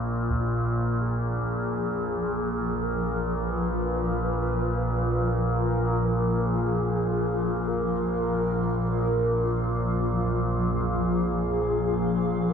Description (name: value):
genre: dark ambient drone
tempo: free time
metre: none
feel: none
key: unclear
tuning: A4 = 440 Hz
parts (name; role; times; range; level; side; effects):
- mellow horn-like synth lead; melody; 0.0-12.5 s; F4 to Cb5; -30 LUFS; equal; wide subtle chorus, ping-pong delay
- overtone-sweeping drone; drone; 0.0-12.5 s; Bb1 to Bb2; -27 LUFS; right 1 dB; chorus, built-in reverb
- granular cloud pad; sustained chords; 1.1-12.5 s; F3 to F5; -29 LUFS; left 2 dB; built-in reverb
- taiko ensemble; percussion; 0.3-0.6 s; none; -37 LUFS; right 1 dB; none
room: wet cathedral reverb, RT60 6.2 s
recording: none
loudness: -24 LUFS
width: side -7 dB against mid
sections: 0.0-12.5 A section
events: fade-in on soft synth lead 0.0-12.5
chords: 0.0 Bb5